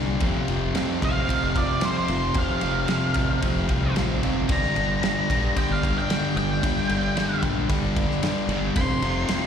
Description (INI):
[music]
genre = quiet-loud alternative rock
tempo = 112 BPM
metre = 4/4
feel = straight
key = unclear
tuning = A4 = 442 Hz
[part]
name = clean electric guitar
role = arpeggios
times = 0.0-4.5 s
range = F2 to G4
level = -33 LUFS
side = right 1 dB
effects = lush chorus
[part]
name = crunchy overdriven guitar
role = riff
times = 0.0-9.5 s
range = F2 to G3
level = -28 LUFS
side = left 10 dB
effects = slapback echo
[part]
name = sludgy distorted guitar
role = riff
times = 0.0-9.5 s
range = F2 to G3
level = -28 LUFS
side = right 8 dB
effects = overdrive
[part]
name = growling fingered electric bass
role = bass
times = 0.0-9.2 s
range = F1 to C2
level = -28 LUFS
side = equal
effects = overdrive
[part]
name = loose indie drum kit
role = drums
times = 0.2-9.4 s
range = kick drum, ride cymbal, snare drum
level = -28 LUFS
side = equal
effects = none
[part]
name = octave-fuzz lead guitar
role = melody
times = 1.0-9.5 s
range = C5 to C6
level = -28 LUFS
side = equal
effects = distortion, plate reverb, slapback echo, tape echo
[sound]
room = light reverb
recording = live gig heard through the venue's PA, recital hall reverb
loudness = -21 LUFS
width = side -8 dB against mid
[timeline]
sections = 0.0-9.5 A section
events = lead electric guitar solo 0.0-9.5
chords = 0.2 F; 4.5 Gm; 8.8 F5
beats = | 0.22 0.76 1.29 1.83 | 2.37 2.90 3.44 3.97 | 4.50 5.04 5.57 6.10 | 6.63 7.17 7.70 8.23 | 8.76 9.30